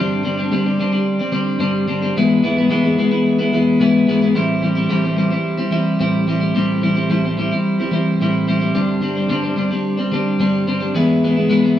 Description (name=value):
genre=rock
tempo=109 BPM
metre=4/4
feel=straight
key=A minor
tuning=A4 = 440 Hz
part: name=twelve-string electric guitar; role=solo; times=0.0-11.8 s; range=G2 to E4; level=-15 LUFS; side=left 1 dB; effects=spring reverb
room=moderate studio reverb, RT60 0.8 s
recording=band playing live in one room, small room ambience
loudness=-15 LUFS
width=side -11 dB against mid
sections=0.0-11.8 A section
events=none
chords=0.0 Gsus4; 2.2 E/G#; 4.3 Am7; 8.7 Gsus4; 10.9 E/G#